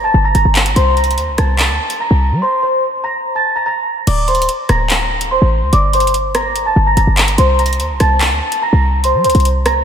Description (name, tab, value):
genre	hip hop, drill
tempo	145 BPM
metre	4/4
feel	half-time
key	G minor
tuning	A4 = 439 Hz
part	celesta	melody	0.0-9.8 s	C5 to Bb6	-15 LUFS	equal	lush chorus, low-pass filter, ping-pong delay
part	short 808-style bass	bass	0.0-9.8 s	D1 to G3	-14 LUFS	equal	none
part	drill drum kit	drums	0.3-9.8 s	crash cymbal, handclaps, hi-hat, rim click	-19 LUFS	equal	none
room	moderate church reverb, RT60 3.2 s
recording	dreamy mix soaked in reverb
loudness	-12 LUFS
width	side -8 dB against mid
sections	0.0-4.1 A section; 4.1-9.8 B section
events	break 2.4-4.1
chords	0.0 Gm; 0.8 N.C.; 4.1 D5; 5.7 Gm; 7.4 N.C.